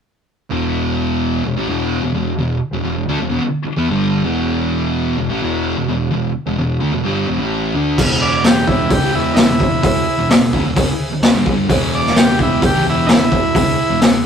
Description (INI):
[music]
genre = garage rock duo or trio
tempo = 129 BPM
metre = 4/4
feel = straight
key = E mixolydian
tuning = A4 = 439 Hz
[part]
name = thick fuzz guitar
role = riff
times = 0.5-14.2 s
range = E2 to D4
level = -18 LUFS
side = equal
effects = distortion
[part]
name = growling picked electric bass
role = bass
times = 0.5-14.2 s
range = E1 to E2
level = -24 LUFS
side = equal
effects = overdrive
[part]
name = combo organ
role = sustained chords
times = 8.0-14.3 s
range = E4 to D5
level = -31 LUFS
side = left 4 dB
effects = none
[part]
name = raw garage drum kit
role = drums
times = 8.0-14.1 s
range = crash cymbal, hi-hat, kick drum, snare drum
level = -14 LUFS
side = equal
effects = none
[part]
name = combo organ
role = melody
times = 8.2-14.0 s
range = D#4 to D5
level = -18 LUFS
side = right 2 dB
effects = spring reverb
[sound]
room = light reverb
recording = rough rehearsal-room recording, tube saturation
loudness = -14 LUFS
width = side -7 dB against mid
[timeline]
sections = 0.5-8.0 A section; 8.0-14.3 B section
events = none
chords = 0.5 E5; 8.0 E